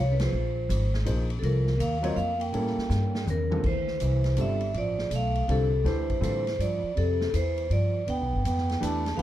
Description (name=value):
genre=modal jazz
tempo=163 BPM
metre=3/4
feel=swing 64% on 8ths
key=D dorian from 3.6 s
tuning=A4 = 440 Hz
part: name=vibraphone with medium hard mallets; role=melody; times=0.0-9.2 s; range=A4 to A5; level=-30 LUFS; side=left 1 dB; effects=none
part: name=upright bass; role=bass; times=0.0-9.2 s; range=G1 to A2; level=-27 LUFS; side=equal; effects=none
part: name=breathy trombone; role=second line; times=0.1-9.2 s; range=C3 to D4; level=-34 LUFS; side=right 5 dB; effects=none
part: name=swinging big-band drum kit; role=drums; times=0.2-9.2 s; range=crash cymbal, hi-hat, kick drum, ride cymbal, snare drum, toms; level=-37 LUFS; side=equal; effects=none
part: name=warm upright piano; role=accompaniment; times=1.1-6.4, 8.8-9.2 s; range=D3 to Db5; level=-32 LUFS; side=equal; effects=none
room=little or no reverb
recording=dark, warm production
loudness=-24 LUFS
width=side -13 dB against mid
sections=0.0-3.6 A section; 3.6-9.2 B section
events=band accent 0.1; drum fill 2.9-3.6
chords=0.0 Bbsus2; 2.5 A7b9; 3.6 Dm11